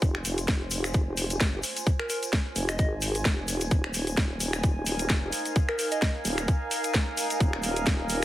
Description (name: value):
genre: bass house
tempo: 130 BPM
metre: 4/4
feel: swing 56% on 16ths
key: unclear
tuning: A4 = 440 Hz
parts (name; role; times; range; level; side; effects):
- vowel-sweep wobble bass; bass; 0.0-8.2 s; Eb1 to Ab1; -31 LUFS; equal; chorus, tube saturation, sidechain pumping
- electronic kick drum; drums; 0.0-8.0 s; none; -25 LUFS; equal; none
- garage drum kit; drums; 0.0-8.2 s; finger snaps, hi-hat, snare drum; -30 LUFS; equal; none
- egg shaker; percussion; 0.0-8.2 s; none; -36 LUFS; left 3 dB; none
- warbly tape-like pad; texture; 0.0-8.2 s; Eb4 to Ab5; -34 LUFS; right 1 dB; chorus, built-in reverb, sidechain pumping
- soft struck synth lead; melody; 2.0-2.9, 5.7-6.1 s; Bb4 to Eb5; -34 LUFS; equal; chorus, tape echo
room: light reverb, digital ambience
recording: heavily compressed radio sound, multiband compression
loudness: -24 LUFS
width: side -14 dB against mid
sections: 0.0-8.2 A section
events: fade-in on ambient pad 0.0-8.2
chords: 0.0 Fm; 3.7 Ebsus4